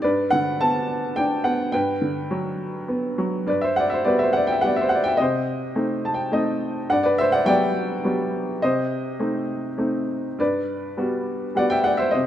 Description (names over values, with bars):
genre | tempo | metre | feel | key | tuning
classical, lyrical solo piano | 104 BPM | 3/4 | rubato | G major | A4 = 439 Hz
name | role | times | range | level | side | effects
clear upright piano | solo | 0.0-12.3 s | G2 to A5 | -20 LUFS | equal | none
room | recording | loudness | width
moderate concert hall reverb, RT60 2.1 s | none | -20 LUFS | side -11 dB against mid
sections
0.0-3.5 A section; 3.5-12.3 B section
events
upright piano fill 5.8-6.9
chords
0.0 G; 1.7 Gmaj7; 5.2 Cm6; 6.9 Gmaj7; 8.6 Cm6; 10.4 Gmaj7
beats
| 0.03 0.60 1.16 | 1.72 2.29 2.88 | 3.48 4.07 4.64 | 5.21 5.77 6.34 | 6.90 7.47 8.05 | 8.63 9.21 9.80 | 10.40 10.99 11.57 | 12.14